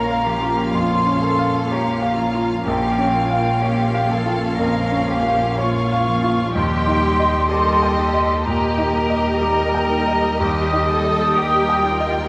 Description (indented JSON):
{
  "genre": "cinematic, emotional film score for orchestra",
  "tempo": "62 BPM",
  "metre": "4/4",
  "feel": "rubato",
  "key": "unclear",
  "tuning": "A4 = 440 Hz",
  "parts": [
    { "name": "mellow flute section", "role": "second line", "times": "0.0-12.1 s", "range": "F5 to Eb6", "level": "-24 LUFS", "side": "equal", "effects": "none" },
    { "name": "warm studio violin section", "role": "second line", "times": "0.0-12.3 s", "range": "F4 to G5", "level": "-30 LUFS", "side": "equal", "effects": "none" },
    { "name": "bright concert grand piano", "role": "accompaniment", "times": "0.0-12.3 s", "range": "Bb1 to G5", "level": "-26 LUFS", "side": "equal", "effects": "none" },
    { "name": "rich studio viola section", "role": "accompaniment", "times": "0.0-12.3 s", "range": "G3 to G4", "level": "-26 LUFS", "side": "equal", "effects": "none" },
    { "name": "concert harp", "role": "arpeggios", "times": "0.0-12.3 s", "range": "Bb2 to Eb5", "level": "-31 LUFS", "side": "equal", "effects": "none" },
    { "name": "rich studio double bass section", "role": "bass", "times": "0.0-12.3 s", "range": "Bb1 to Eb2", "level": "-28 LUFS", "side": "equal", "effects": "none" },
    { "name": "warm studio cello section", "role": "bass", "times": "0.0-12.3 s", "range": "F4 to Bb4", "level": "-30 LUFS", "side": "equal", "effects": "none" }
  ],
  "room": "wet scoring stage reverb, RT60 2.1 s",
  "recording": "none",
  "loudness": "-19 LUFS",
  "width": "mono",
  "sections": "0.0-12.3 A section",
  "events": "none",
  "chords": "0.0 Bbm; 6.6 Eb"
}